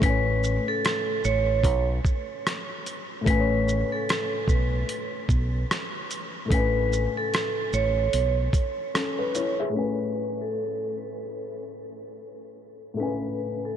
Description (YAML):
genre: lo-fi hip hop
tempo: 74 BPM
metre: 4/4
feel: swing 61% on 16ths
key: A major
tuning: A4 = 439 Hz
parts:
  - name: vibraphone with medium hard mallets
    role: melody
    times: 0.0-13.8 s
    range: A4 to C#5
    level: -29 LUFS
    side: moving between left 8 dB and right 6 dB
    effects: auto-pan, low-pass filter, analog delay
  - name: felt-muted upright piano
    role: accompaniment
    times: 0.0-13.8 s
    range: A2 to G#5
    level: -30 LUFS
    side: left 2 dB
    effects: cassette tape, low-pass filter
  - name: fingered electric bass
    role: bass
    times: 0.0-8.5 s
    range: A1 to B1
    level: -26 LUFS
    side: equal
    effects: none
  - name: dusty soul sampler-style drum kit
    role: drums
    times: 0.0-9.6 s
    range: hi-hat, kick drum, rim click, shaker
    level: -28 LUFS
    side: right 1 dB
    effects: none
room: moderate huge ambient reverb, RT60 7.3 s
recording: dreamy mix soaked in reverb, low-pass filter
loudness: -23 LUFS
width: side -9 dB against mid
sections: 0.0-9.7 A section; 9.7-13.8 B section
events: filter sweep 9.7-13.8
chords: 0.0 Amaj9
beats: | 0.02 0.83 1.64 2.45 | 3.26 4.07 4.88 5.69 | 6.50 7.32 8.13 8.94 | 9.75 10.56 11.37 12.18 | 12.99